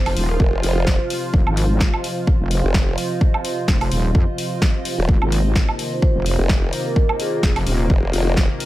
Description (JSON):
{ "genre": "bass house", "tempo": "128 BPM", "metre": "4/4", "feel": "swing 56% on 16ths", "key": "unclear", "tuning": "A4 = 440 Hz", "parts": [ { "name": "sweeping resonant pad", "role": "sustained chords", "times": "0.0-8.7 s", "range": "C3 to F4", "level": "-28 LUFS", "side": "right 1 dB", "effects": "chorus, sidechain pumping" }, { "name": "wobble bass", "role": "bass", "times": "0.0-7.9 s", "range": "Eb1 to F2", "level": "-20 LUFS", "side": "equal", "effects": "chorus, overdrive, sidechain pumping" }, { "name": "warbly tape-like pad", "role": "texture", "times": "0.1-8.7 s", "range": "F4 to Eb5", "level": "-29 LUFS", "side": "equal", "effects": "chorus, built-in reverb, phaser, sidechain pumping" }, { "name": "house drum kit", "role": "drums", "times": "0.1-8.7 s", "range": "hi-hat, snare drum, woodblock", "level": "-25 LUFS", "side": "equal", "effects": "studio reverb" }, { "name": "vibraphone with soft mallets", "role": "melody", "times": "0.3-1.1, 5.9-8.3 s", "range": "F4 to C5", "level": "-27 LUFS", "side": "right 1 dB", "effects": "dub echo" }, { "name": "formant-sweep wobble bass", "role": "bass", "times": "0.4-8.5 s", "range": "Eb1 to F1", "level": "-20 LUFS", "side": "equal", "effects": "chorus, overdrive, sidechain pumping" }, { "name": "electronic kick drum", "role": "drums", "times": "0.4-8.5 s", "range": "none", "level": "-17 LUFS", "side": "equal", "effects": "studio reverb" } ], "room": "little or no reverb", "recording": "none", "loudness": "-16 LUFS", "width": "side -16 dB against mid", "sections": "0.0-8.7 A section", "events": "none", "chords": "0.0 F5", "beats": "0.40 0.87 | 1.34 1.80 2.27 2.74 | 3.21 3.68 4.15 4.62 | 5.09 5.55 6.02 6.49 | 6.96 7.43 7.90 8.37" }